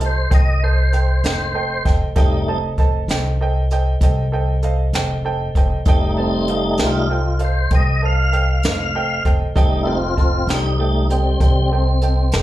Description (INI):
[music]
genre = slow blues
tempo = 65 BPM (dotted quarters)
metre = 12/8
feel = straight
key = F mixolydian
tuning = A4 = 440 Hz
[part]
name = clear concert grand piano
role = accompaniment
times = 0.0-12.4 s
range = A4 to A5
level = -25 LUFS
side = right 4 dB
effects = none
[part]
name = tonewheel organ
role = sustained chords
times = 0.0-12.3 s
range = G3 to F5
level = -21 LUFS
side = left 1 dB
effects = slow rotary speaker, overdrive, chorus vibrato
[part]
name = upright bass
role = bass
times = 0.0-12.4 s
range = F1 to C2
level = -19 LUFS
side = equal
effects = none
[part]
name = jazz brush drum kit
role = drums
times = 0.0-12.4 s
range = hi-hat, kick drum, snare drum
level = -18 LUFS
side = equal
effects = none
[sound]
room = light reverb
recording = live gig heard through the venue's PA, club reverb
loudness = -15 LUFS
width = side -14 dB against mid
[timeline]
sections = 0.0-12.4 A section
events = tonewheel organ solo 0.0-12.4; grand piano fill 4.9-5.9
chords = 0.0 F9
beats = 0.32 1.24 | 2.17 3.09 4.02 4.94 | 5.87 6.79 7.71 8.63 | 9.56 10.48 11.40 12.33